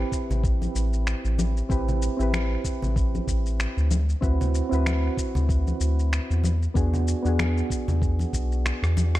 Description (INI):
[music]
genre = sunset chillout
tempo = 95 BPM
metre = 4/4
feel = swing 56% on 16ths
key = A dorian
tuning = A4 = 441 Hz
[part]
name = soft electric-piano-like synth keys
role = accompaniment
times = 0.0-9.2 s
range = B3 to B4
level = -29 LUFS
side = right 1 dB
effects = chorus, auto-pan, digital delay
[part]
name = round analog bass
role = bass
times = 0.0-9.2 s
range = A1 to E2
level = -23 LUFS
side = equal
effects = tube saturation
[part]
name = electronic kick drum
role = drums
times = 0.1-8.5 s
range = none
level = -27 LUFS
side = equal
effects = studio reverb
[part]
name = electronic shaker, finger snaps and rim click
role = drums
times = 0.1-9.2 s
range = none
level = -33 LUFS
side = left 1 dB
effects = studio reverb
[part]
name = congas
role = percussion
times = 0.3-9.1 s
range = none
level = -33 LUFS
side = left 2 dB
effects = none
[sound]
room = digital ambience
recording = dark, warm production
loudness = -22 LUFS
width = side -15 dB against mid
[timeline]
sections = 0.0-9.2 A section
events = drum fill 8.7-9.2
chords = 0.0 Am7; 3.9 D13; 6.4 E7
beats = 0.44 1.07 | 1.70 2.33 2.97 3.60 | 4.23 4.86 5.49 6.12 | 6.75 7.39 8.02 8.65